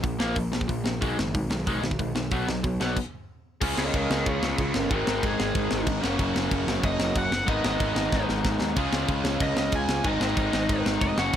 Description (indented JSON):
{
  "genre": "punk rock",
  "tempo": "186 BPM",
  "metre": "4/4",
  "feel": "straight",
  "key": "unclear",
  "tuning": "A4 = 440 Hz",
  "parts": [
    { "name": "crunchy overdriven guitar", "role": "riff", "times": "0.0-11.4 s", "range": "Gb2 to Ab4", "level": "-27 LUFS", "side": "equal", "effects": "none" },
    { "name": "fuzz picked electric bass", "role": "bass", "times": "0.0-11.4 s", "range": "F1 to Eb2", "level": "-31 LUFS", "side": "equal", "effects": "overdrive" },
    { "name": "tight metal drum kit", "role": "drums", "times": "0.0-11.4 s", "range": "crash cymbal, hi-hat, kick drum, snare drum", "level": "-28 LUFS", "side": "equal", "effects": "none" },
    { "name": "lead guitar through a small cranked amp", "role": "melody", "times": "3.8-11.4 s", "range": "Db4 to Ab5", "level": "-30 LUFS", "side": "equal", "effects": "overdrive" }
  ],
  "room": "light reverb",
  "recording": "none",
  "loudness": "-23 LUFS",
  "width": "side -10 dB against mid",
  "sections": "0.0-3.6 A section; 3.6-11.4 B section",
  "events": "stop 3.0-3.6; lead electric guitar solo 3.6-11.4; drum fill 8.1-8.8",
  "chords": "0.0 Bb5; 1.0 Abm; 2.3 B5; 3.6 Db; 4.9 Ab; 6.0 Gb; 7.5 Abm; 8.8 Db; 10.0 Ab"
}